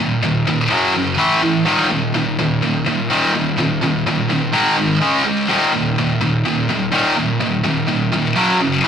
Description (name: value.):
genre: rock.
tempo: 125 BPM.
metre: 4/4.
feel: straight.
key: unclear.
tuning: A4 = 436 Hz.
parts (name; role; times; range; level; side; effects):
heavy high-gain guitar; solo; 0.0-8.9 s; Eb2 to Db4; -14 LUFS; equal; distortion.
room: wet stone room reverb, RT60 1.0 s.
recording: rough rehearsal-room recording, tube saturation.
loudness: -14 LUFS.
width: side -8 dB against mid.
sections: 0.0-8.9 A section.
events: none.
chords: 0.0 Eb5; 0.7 Gb5; 1.2 A5; 1.7 Eb5; 4.5 Ab5; 5.0 Db5; 5.5 Eb5; 8.4 Gb5.